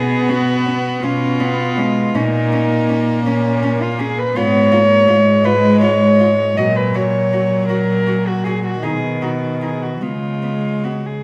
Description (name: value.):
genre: classical, lyrical piece for cello ensemble.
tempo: 54 BPM (dotted quarters).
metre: 6/8.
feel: uneven beats, rubato.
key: unclear.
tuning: A4 = 445 Hz.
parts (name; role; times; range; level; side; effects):
warm cello; melody; 0.0-11.2 s; C#4 to D#5; -20 LUFS; equal; none.
warm cello; accompaniment; 0.0-11.2 s; D#3 to C#4; -22 LUFS; equal; none.
warm cello; bass; 0.0-11.1 s; G#2 to C#3; -22 LUFS; equal; none.
warm cello; second line; 0.3-10.9 s; B3 to F#4; -30 LUFS; equal; none.
room: wet recital hall reverb, RT60 1.4 s.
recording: none.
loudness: -16 LUFS.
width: mono.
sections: 0.0-11.2 A section.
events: none.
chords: 0.0 C#7/B; 2.1 A#madd11; 4.4 C#/G#; 6.6 F#/A#; 8.8 B; 10.0 C#.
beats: 1.02 | 2.14 3.25 | 4.35 5.44 | 6.56 7.68 | 8.82 10.01.